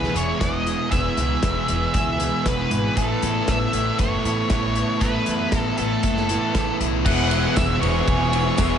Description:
rock, shoegaze and dream pop; 118 BPM; 4/4; straight; E major; A4 = 442 Hz
octave-fuzz lead guitar; melody; 0.0-8.8 s; A4 to F#5; -26 LUFS; equal; distortion, slapback echo
hollow soft pad; sustained chords; 0.0-8.8 s; E4 to E6; -34 LUFS; equal; ensemble chorus
electric guitar through a small old amp; arpeggios; 0.0-8.8 s; B3 to A4; -31 LUFS; left 1 dB; analog chorus, slapback echo
biting overdriven guitar; riff; 0.0-8.8 s; E3 to A4; -26 LUFS; right 8 dB; reverse reverb
thick fuzz guitar; riff; 0.0-8.8 s; E2 to A3; -27 LUFS; left 9 dB; distortion, wide subtle chorus
upright bass; bass; 0.0-8.8 s; E1 to F#2; -26 LUFS; equal
loose indie drum kit; drums; 0.0-8.7 s; crash cymbal, hi-hat, kick drum, ride cymbal, snare drum; -25 LUFS; equal
distorted electric guitar; riff; 7.0-8.8 s; E3 to G#4; -28 LUFS; left 2 dB; distortion
tambourine; percussion; 7.6-8.7 s; -36 LUFS; right 14 dB
light reverb, small room ambience; nothing above 10.8 kHz; -19 LUFS; side -8 dB against mid
0.0-7.1 A section; 7.1-8.8 B section
0.0 E; 3.0 Asus2; 7.1 E

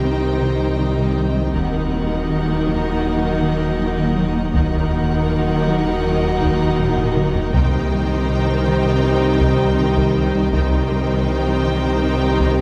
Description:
cinematic, hybrid orchestral and electronic film score; 80 BPM; 4/4; straight; C minor; A4 = 440 Hz
bright symphonic violin section; second line; 0.0-12.6 s; Bb4 to G5; -30 LUFS; equal
warm symphonic viola section; accompaniment; 0.0-12.6 s; Eb3 to Eb4; -26 LUFS; equal
granular cloud pad; sustained chords; 0.0-12.6 s; Gb3 to Eb5; -28 LUFS; equal; built-in reverb
mellow French horn section; sustained chords; 0.0-12.6 s; Eb3 to G4; -27 LUFS; equal
soft round pluck; arpeggios; 0.0-12.5 s; C3 to Eb4; -27 LUFS; equal; chorus, tape echo
sub bass with octave; bass; 0.0-12.6 s; Eb1 to C2; -26 LUFS; equal
warm symphonic cello section; bass; 0.0-12.6 s; C2 to Eb2; -26 LUFS; equal
taiko ensemble; drums; 1.5-12.6 s; -26 LUFS; equal
wet scoring stage reverb, RT60 2.0 s; heard from further back in the room; -18 LUFS; mono
0.0-12.6 A section
drum fill 6.8-7.5
0.0 Cm; 1.5 Ebm; 7.5 Cm

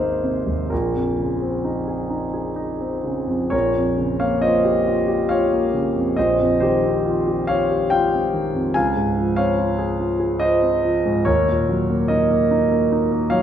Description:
classical, impressionist solo piano; 62-75 BPM; 3/4; rubato; Bb minor; A4 = 440 Hz
clear concert grand piano; solo; 0.0-13.4 s; Ab1 to Ab5; -18 LUFS; equal
moderate concert hall reverb, RT60 1.9 s; minimal, uncompressed stereo recording; -18 LUFS; side -9 dB against mid
0.0-3.5 A section; 3.5-13.4 A section
0.0 Abadd9; 0.7 Bbm11; 3.5 Bbm6; 8.7 Dbmaj7; 11.3 Ebm7

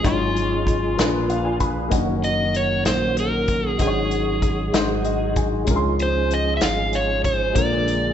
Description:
slow gospel; 64 BPM (dotted quarters); 6/8; straight; Db major; A4 = 440 Hz
overdriven slide guitar; melody; 0.0-8.1 s; F4 to F5; -23 LUFS; equal
warm upright piano; accompaniment; 0.0-8.1 s; Ab2 to C6; -25 LUFS; left 4 dB
percussive tonewheel organ; sustained chords; 0.0-8.1 s; D3 to Cb5; -27 LUFS; right 2 dB; fast rotary speaker, chorus vibrato
fingered electric bass; bass; 0.0-8.1 s; Gb1 to Db2; -26 LUFS; equal
natural country drum kit; drums; 0.0-8.0 s; hi-hat, kick drum, snare drum; -24 LUFS; equal
wet recital hall reverb, RT60 1.5 s; recorded in a church or concert hall, nothing above 7.9 kHz; -18 LUFS; side -9 dB against mid
0.0-8.1 A section
upright piano fill 1.0-1.9, 4.7-5.7
0.0 Ab7sus4; 1.0 Bb7b9; 1.9 Ebm7/Gb; 3.8 Ab7sus4; 4.7 Ab7; 5.7 Dbmaj7; 7.6 Bb7

